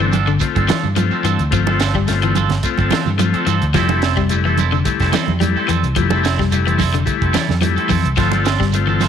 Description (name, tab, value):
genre	afrobeat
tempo	108 BPM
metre	4/4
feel	swing 53% on 16ths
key	unclear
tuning	A4 = 438 Hz
part	combo organ	accompaniment	0.0-9.0 s	G3 to F4	-22 LUFS	left 11 dB	none
part	electric guitar at the edge of break-up	arpeggios	0.0-9.0 s	D3 to G3	-22 LUFS	left 8 dB	none
part	twangy electric guitar	stabs	0.0-9.1 s	F3 to A4	-22 LUFS	right 10 dB	none
part	fingered electric bass	bass	0.0-9.1 s	F1 to G2	-18 LUFS	equal	none
part	tight funk drum kit	drums	0.1-9.1 s	hi-hat, kick drum, snare drum	-23 LUFS	right 3 dB	none
part	congas	percussion	0.1-9.1 s	none	-23 LUFS	right 9 dB	none
part	shekere	percussion	0.1-9.1 s	none	-29 LUFS	right 7 dB	none
room	moderate echo chamber reverb, RT60 1.4 s, small room ambience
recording	1960s-style stereo with parts hard left and right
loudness	-14 LUFS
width	side -8 dB against mid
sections	0.0-9.1 A section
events	none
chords	0.0 G9sus4; 3.7 Fmaj9; 8.2 G9sus4